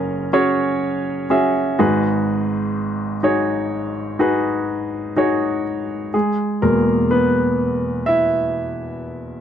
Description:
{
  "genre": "pop",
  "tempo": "62 BPM",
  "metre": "4/4",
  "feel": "straight",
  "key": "unclear",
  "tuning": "A4 = 440 Hz",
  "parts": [
    { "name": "clear baby grand piano", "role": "solo", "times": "0.0-9.4 s", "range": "F#1 to E5", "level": "-17 LUFS", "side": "equal", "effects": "none" }
  ],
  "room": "light reverb",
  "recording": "dry, close 1970s-style studio recording",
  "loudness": "-17 LUFS",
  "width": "side -9 dB against mid",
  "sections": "0.0-6.1 A section; 6.1-9.4 B section",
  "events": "grand piano solo 6.1-9.4",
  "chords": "0.0 F#sus2; 1.8 G#m7; 6.1 E"
}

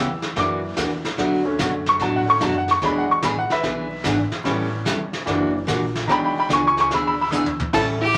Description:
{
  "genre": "country, western swing",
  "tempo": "147 BPM",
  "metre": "4/4",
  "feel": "swing 67% on 8ths",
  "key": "unclear",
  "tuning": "A4 = 440 Hz",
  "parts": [
    { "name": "bright upright piano", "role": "accompaniment", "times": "0.0-8.0 s", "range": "D3 to E6", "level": "-24 LUFS", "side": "equal", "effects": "none" },
    { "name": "picked steel-string acoustic guitar", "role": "accompaniment", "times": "0.0-8.2 s", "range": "B2 to A4", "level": "-27 LUFS", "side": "equal", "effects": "none" },
    { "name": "upright bass", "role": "bass", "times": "0.0-8.2 s", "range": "E1 to A2", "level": "-33 LUFS", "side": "equal", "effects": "none" },
    { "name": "vintage brush drum kit", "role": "drums", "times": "0.2-8.2 s", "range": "brushed snare drum, crash cymbal, hi-hat, kick drum, snare drum, toms", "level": "-30 LUFS", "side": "equal", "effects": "none" },
    { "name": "clear fiddle", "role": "melody", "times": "7.7-8.2 s", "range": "G4 to A4", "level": "-22 LUFS", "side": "equal", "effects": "none" },
    { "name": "hollow-body jazz guitar", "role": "second line", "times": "7.7-8.2 s", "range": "E4", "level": "-27 LUFS", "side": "equal", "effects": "none" }
  ],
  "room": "wet small room reverb, RT60 0.5 s",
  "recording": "vinyl crackle",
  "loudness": "-21 LUFS",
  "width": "mono",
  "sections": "0.0-7.7 A section",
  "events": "upright piano solo 0.0-7.7; drum fill 7.3-7.7",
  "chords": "0.4 F#aug7; 1.2 Bm7; 2.8 E7; 4.5 A7; 5.3 F#aug7; 6.1 E7"
}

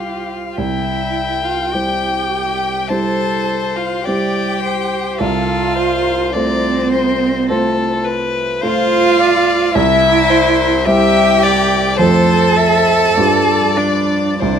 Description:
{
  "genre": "classical, slow romantic movement for piano quartet",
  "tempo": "52 BPM",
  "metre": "4/4",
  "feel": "uneven beats, rubato",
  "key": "C major",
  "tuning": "A4 = 440 Hz",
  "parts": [
    { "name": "warm violin", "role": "melody", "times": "0.0-14.6 s", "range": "C5 to A5", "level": "-20 LUFS", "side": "left 7 dB", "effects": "none" },
    { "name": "rich cello", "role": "second line", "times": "0.0-14.6 s", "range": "C4 to A4", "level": "-18 LUFS", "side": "right 6 dB", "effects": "none" },
    { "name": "rich violin", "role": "second line", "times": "0.0-14.6 s", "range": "G4 to G5", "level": "-18 LUFS", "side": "left 4 dB", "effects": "none" },
    { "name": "warm baby grand piano", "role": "accompaniment", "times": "0.0-14.6 s", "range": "C2 to C5", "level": "-18 LUFS", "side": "right 2 dB", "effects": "none" }
  ],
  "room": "moderate recital hall reverb, RT60 1.6 s",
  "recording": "close, detailed microphones",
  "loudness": "-12 LUFS",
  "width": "side -8 dB against mid",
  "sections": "0.6-14.6 A section",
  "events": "none",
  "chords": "0.0 C; 5.2 F/C; 9.8 C; 12.0 F; 13.2 G9"
}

